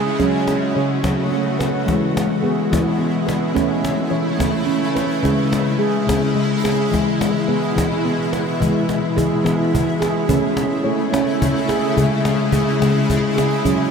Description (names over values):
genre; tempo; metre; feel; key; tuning
world meditative, meditative tuned percussion; 71 BPM (dotted quarters); 6/8; straight; E major; A4 = 440 Hz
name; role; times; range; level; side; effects
shimmering ambient pad; sustained chords; 0.0-13.9 s; B2 to F#4; -23 LUFS; left 1 dB; chorus, built-in reverb
handpan; arpeggios; 0.0-13.9 s; C#3 to C#5; -18 LUFS; equal; ping-pong delay
cajon; percussion; 0.2-13.8 s; none; -25 LUFS; left 1 dB; none
room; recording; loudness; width
wet huge ambient reverb, RT60 7.7 s; dreamy mix soaked in reverb; -16 LUFS; side -6 dB against mid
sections
0.0-8.6 A section; 8.6-13.9 B section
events
none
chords
0.2 F#m; 1.9 E; 3.6 A; 5.2 C#m; 6.9 E; 10.3 A; 12.0 C#m